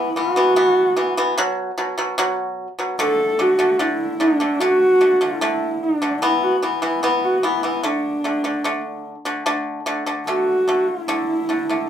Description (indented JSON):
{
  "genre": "mongolian traditional, Mongolian folk",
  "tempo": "74 BPM",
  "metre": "4/4",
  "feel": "straight",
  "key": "D gong mode",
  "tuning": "A4 = 440 Hz",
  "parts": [
    { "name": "dark horsehead fiddle", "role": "melody", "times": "0.0-11.9 s", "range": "D4 to A4", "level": "-18 LUFS", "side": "right 1 dB", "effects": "none" },
    { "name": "pipa", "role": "arpeggios", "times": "0.0-11.9 s", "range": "B2 to B3", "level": "-21 LUFS", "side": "left 1 dB", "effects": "none" }
  ],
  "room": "wet studio ambience, RT60 0.5 s",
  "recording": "band playing live in one room",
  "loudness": "-17 LUFS",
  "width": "side -9 dB against mid",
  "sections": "0.0-9.5 A section; 9.5-11.9 B section",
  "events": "none",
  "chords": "0.0 E5; 1.4 B5; 3.0 D5; 6.2 E5; 7.9 D5"
}